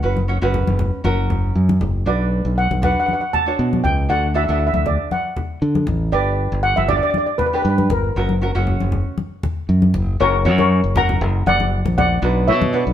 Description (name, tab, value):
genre	calypso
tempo	118 BPM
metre	4/4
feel	swing 53% on 16ths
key	unclear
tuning	A4 = 440 Hz
part	steel pan	melody	0.0-12.9 s	A#4 to A#5	-20 LUFS	equal	none
part	tenor ukulele	accompaniment	0.0-12.9 s	C#4 to D5	-24 LUFS	right 1 dB	none
part	modern bright fingered electric bass	bass	0.0-12.9 s	F#1 to D3	-18 LUFS	equal	none
part	congas	percussion	0.2-12.7 s	none	-24 LUFS	left 2 dB	none
room	moderate stone room reverb, RT60 1.1 s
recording	band playing live in one room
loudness	-16 LUFS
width	side -10 dB against mid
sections	0.0-10.2 A section; 10.2-12.9 B section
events	none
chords	0.0 F#sus4; 1.0 F#; 2.1 Bmadd9; 4.1 D; 6.1 G; 8.2 F#; 12.2 Bmadd9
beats	| 0.03 0.54 1.05 1.55 | 2.06 2.57 3.08 3.58 | 4.09 4.60 5.11 5.62 | 6.13 6.63 7.14 7.65 | 8.16 8.67 9.18 9.69 | 10.20 10.70 11.21 11.72 | 12.22 12.73